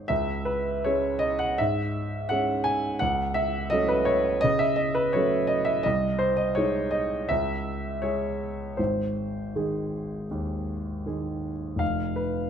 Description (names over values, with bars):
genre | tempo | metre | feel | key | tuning
classical, romantic character piece for solo piano | 78-86 BPM | 4/4 | rubato | C# minor | A4 = 436 Hz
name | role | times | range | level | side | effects
warm grand piano | solo | 0.0-12.5 s | F1 to G#5 | -24 LUFS | equal | none
room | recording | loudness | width
light reverb | close, detailed microphones | -24 LUFS | side -8 dB against mid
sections
0.1-12.5 A section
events
none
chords
0.1 C#m; 3.0 F#m/C#; 5.8 G#/B#; 7.3 C#m; 8.8 G#; 11.8 F(b5, no3)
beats
| 0.10 0.85 1.58 2.31 | 3.01 3.72 4.43 5.14 | 5.85 6.56 7.29 8.03 | 8.78 9.54 10.30 11.05 | 11.81